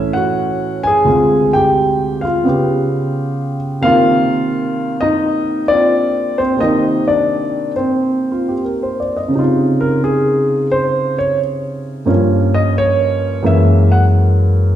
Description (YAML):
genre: solo jazz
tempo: 87 BPM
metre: 4/4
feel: swing 69% on 8ths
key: unclear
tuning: A4 = 439 Hz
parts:
  - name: warm concert grand piano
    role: solo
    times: 0.0-14.8 s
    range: D2 to Ab5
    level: -13 LUFS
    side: equal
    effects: none
room: wet recital hall reverb, RT60 1.6 s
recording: recorded in a church or concert hall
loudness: -13 LUFS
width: side -11 dB against mid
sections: 0.0-9.3 A section; 9.3-14.8 B section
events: grand piano solo 9.3-14.8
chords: 0.0 A; 1.1 Dm7b5; 2.4 Db7#11; 3.8 Cm9; 9.3 Dbmaj9; 12.1 Gm7b5; 13.4 F#9